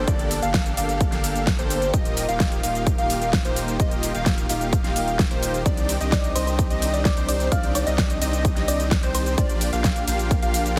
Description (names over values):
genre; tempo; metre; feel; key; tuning
EDM, festival progressive house; 129 BPM; 4/4; straight; unclear; A4 = 440 Hz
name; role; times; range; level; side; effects
lush unison pad; sustained chords; 0.0-10.8 s; D3 to A4; -37 LUFS; equal; none
plucky unison lead; arpeggios; 0.0-10.7 s; C5 to F5; -31 LUFS; equal; sidechain pumping, dub echo
dense compressed supersaw; riff; 0.0-10.7 s; Bb3 to F5; -31 LUFS; equal; sidechain pumping, dub echo
saturated sub bass; bass; 0.0-10.8 s; Eb1 to C2; -30 LUFS; equal; sidechain pumping
downlifter; sound effects; 0.0-1.9 s; none; barely audible; none; none
big-room dance drum kit; drums; 0.1-10.8 s; hi-hat, ride cymbal, shaker, snare drum; -30 LUFS; equal; overdrive
electronic kick drum; drums; 0.1-10.4 s; none; -25 LUFS; equal; overdrive
thumb-piano-like synth pluck; melody; 6.1-9.4 s; C5 to F5; -32 LUFS; equal; chorus, dub echo
room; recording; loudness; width
light reverb; heavily compressed radio sound; -22 LUFS; mono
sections
0.0-10.8 A section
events
none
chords
0.0 Gmadd9; 1.9 Ebadd9; 5.7 Cmadd9; 9.4 Bb6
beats
| 0.08 0.54 1.01 1.47 | 1.94 2.40 2.87 3.33 | 3.80 4.26 4.73 5.19 | 5.66 6.12 6.59 7.05 | 7.52 7.98 8.45 8.91 | 9.38 9.84 10.31 10.77